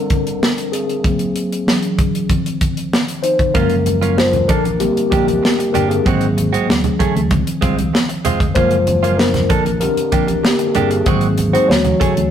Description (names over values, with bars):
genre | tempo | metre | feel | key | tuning
lush 1970s-style soul | 96 BPM | 4/4 | straight | unclear | A4 = 440 Hz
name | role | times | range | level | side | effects
mellow tine electric piano | accompaniment | 0.0-12.3 s | D3 to C#5 | -17 LUFS | left 2 dB | medium stereo tremolo
tight funk drum kit | drums | 0.1-12.3 s | hi-hat, kick drum, snare drum | -18 LUFS | equal | none
direct-recorded clean electric guitar | riff | 3.5-12.2 s | Ab3 to A4 | -22 LUFS | right 5 dB | none
fingered electric bass | bass | 3.5-12.3 s | F1 to D2 | -20 LUFS | right 1 dB | none
congas | percussion | 3.9-12.3 s | none | -26 LUFS | right 3 dB | none
room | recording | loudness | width
moderate stone room reverb, RT60 1.1 s | rough rehearsal-room recording | -13 LUFS | side -9 dB against mid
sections
0.0-12.3 A section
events
tine electric piano solo 0.0-12.3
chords
0.0 D7sus4; 1.0 Ab7; 1.7 E69; 2.3 Cmadd11/Eb; 3.6 Gbmaj7; 4.5 Bb6; 6.1 Ab7; 6.7 Dmaj7; 7.3 Dbmaj7 (rootless); 8.6 Gbmaj7; 9.5 Bb6; 11.1 Ab7; 11.7 Dmaj7